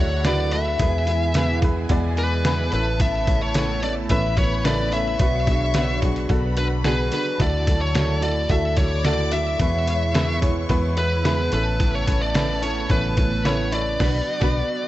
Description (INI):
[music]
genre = piano-driven pop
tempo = 109 BPM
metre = 4/4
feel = straight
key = A major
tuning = A4 = 443 Hz
[part]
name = high-gain lead guitar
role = melody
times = 0.0-14.9 s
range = B4 to E5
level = -25 LUFS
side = left 1 dB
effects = distortion
[part]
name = warm symphonic violin section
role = second line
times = 0.0-14.6 s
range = F#4 to D6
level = -33 LUFS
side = left 1 dB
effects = none
[part]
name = warm upright piano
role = accompaniment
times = 0.0-14.9 s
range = A2 to D5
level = -28 LUFS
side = equal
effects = none
[part]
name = lush unison pad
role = sustained chords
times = 0.0-14.9 s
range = B2 to F#4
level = -34 LUFS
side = right 2 dB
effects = chorus, phaser
[part]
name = fingerpicked steel-string acoustic guitar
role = riff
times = 0.0-14.6 s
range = E2 to F#4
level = -32 LUFS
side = right 3 dB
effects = none
[part]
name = vintage muted fingered electric bass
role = bass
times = 0.0-14.6 s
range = A1 to E2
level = -24 LUFS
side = equal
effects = none
[part]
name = trip hop sampler-style drum kit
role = drums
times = 0.2-14.6 s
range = crash cymbal, hi-hat, kick drum, snare drum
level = -23 LUFS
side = equal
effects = none
[sound]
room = light reverb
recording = nothing above 8.0 kHz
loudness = -19 LUFS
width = side -15 dB against mid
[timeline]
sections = 0.0-14.9 A section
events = band accent 14.0-14.9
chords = 0.0 Dadd9; 0.8 E; 2.7 Aadd9; 5.2 Bm; 7.4 Dadd9; 9.6 E; 11.5 Aadd9; 14.0 Bm